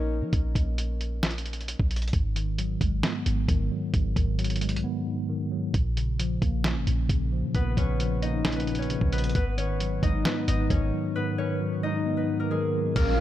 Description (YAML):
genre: hip hop, trap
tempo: 133 BPM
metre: 4/4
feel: half-time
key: unclear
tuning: A4 = 438 Hz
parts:
  - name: concert harp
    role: melody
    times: 0.0-2.8, 7.5-13.2 s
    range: Ab3 to Eb5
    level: -31 LUFS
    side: left 3 dB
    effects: ping-pong delay
  - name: clean 808-style bass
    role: bass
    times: 0.0-13.2 s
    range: Ab1 to F3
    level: -28 LUFS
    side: equal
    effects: none
  - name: lo-fi sampler-style drum kit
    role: drums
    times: 0.3-13.1 s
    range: crash cymbal, hi-hat, kick drum, snare drum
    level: -27 LUFS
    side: equal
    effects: none
  - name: mellow tine electric piano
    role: accompaniment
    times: 2.1-13.2 s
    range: Ab2 to Db4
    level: -29 LUFS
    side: equal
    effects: medium stereo tremolo
  - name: airy breathy pad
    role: sustained chords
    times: 13.0-13.2 s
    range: Db4 to F5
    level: -28 LUFS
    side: right 1 dB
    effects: chorus
  - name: impact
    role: sound effects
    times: 13.0-13.2 s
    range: none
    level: -31 LUFS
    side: right 1 dB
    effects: none
room: little or no reverb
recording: none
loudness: -24 LUFS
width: side -13 dB against mid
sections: 0.0-13.0 A section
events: break 0.0-2.1, 4.8-5.7; impact 13.0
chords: 0.0 Bbm; 2.1 Abm7; 5.7 Bbm; 9.4 Abm7